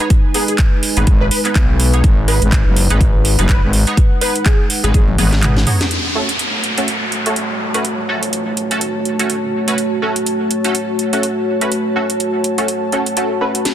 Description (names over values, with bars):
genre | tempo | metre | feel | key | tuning
bass house | 124 BPM | 4/4 | swing 57% on 16ths | F# dorian | A4 = 440 Hz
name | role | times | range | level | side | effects
plucky unison lead | melody | 0.0-5.0 s | G#4 to B4 | -24 LUFS | left 1 dB | ensemble chorus, dub echo
dark analog pad | sustained chords | 0.0-13.7 s | G#3 to C#5 | -22 LUFS | equal | chorus, sidechain pumping
band-passed chord stab | stabs | 0.0-13.6 s | A3 to C#5 | -22 LUFS | right 2 dB | ensemble chorus, cassette tape, sidechain pumping, dub echo
house drum kit | drums | 0.0-13.7 s | handclaps, hi-hat, snare drum, toms | -20 LUFS | right 1 dB | none
warbly tape-like pad | texture | 0.0-13.7 s | D#4 to A5 | -24 LUFS | left 1 dB | chorus, built-in reverb, phaser, sidechain pumping
electronic kick drum | drums | 0.1-5.1 s | none | -13 LUFS | equal | none
growling FM bass | bass | 1.0-5.7 s | F#1 to B1 | -14 LUFS | equal | overdrive, sidechain pumping
downlifter and riser | sound effects | 5.9-9.8, 13.7 s | none | -22 LUFS | equal | none
room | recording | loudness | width
light reverb, digital ambience | dense, heavily limited modern master | -13 LUFS | side -11 dB against mid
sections
0.0-5.9 A section; 5.9-13.7 B section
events
drum fill 4.9-5.9; kick drops out 5.4-5.9; band accent 5.8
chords
0.0 G#m; 5.9 F#m